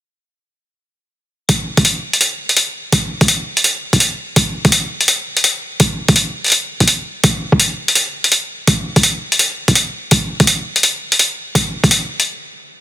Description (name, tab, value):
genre	half-time drum and bass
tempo	167 BPM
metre	4/4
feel	swing 59% on 16ths, half-time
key	none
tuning	none
part	electronic hi-hat	drums	1.5-12.3 s	none	-14 LUFS	left 1 dB	overdrive, studio reverb
part	electronic kick drum	drums	1.5-11.9 s	none	-15 LUFS	right 1 dB	high-pass filter on kick, studio reverb
room	digital ambience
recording	dense, heavily limited modern master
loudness	-12 LUFS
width	side -14 dB against mid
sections	1.5-12.8 A section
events	stop 12.3-12.8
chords	none